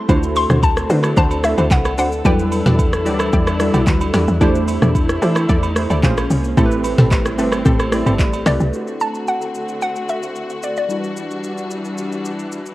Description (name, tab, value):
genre	amapiano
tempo	111 BPM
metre	4/4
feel	straight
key	unclear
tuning	A4 = 441 Hz
part	hollow square pluck	melody	0.0-3.8, 8.5-12.7 s	D5 to C6	-22 LUFS	left 1 dB	chorus, phaser, tape echo
part	glassy digital keys	accompaniment	0.0-12.7 s	F#3 to D5	-22 LUFS	right 1 dB	chorus
part	warm studio string section	sustained chords	0.0-12.7 s	D3 to A4	-25 LUFS	left 1 dB	sidechain pumping
part	punchy chord stab	stabs	0.1-8.6 s	C4 to D5	-24 LUFS	left 1 dB	chorus, tape echo
part	tight log drum bass	bass	0.1-8.7 s	G1 to E3	-19 LUFS	equal	none
part	afro-pop drum kit	drums	0.1-12.7 s	handclaps, hi-hat, kick drum, rim click, shaker, snare drum, toms	-18 LUFS	equal	none
part	agogo bells and woodblock	percussion	0.1-8.5 s	none	-30 LUFS	right 5 dB	none
room	light reverb, digital ambience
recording	worn, warbling old tape, cassette tape, warbly pitch drift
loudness	-15 LUFS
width	side -16 dB against mid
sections	0.0-8.7 A section; 8.7-12.7 B section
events	drop 0.0-8.7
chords	0.1 D7; 2.2 Em9; 4.4 C69/E; 6.0 Bbm7; 6.6 Am7; 8.7 D7; 10.9 Em9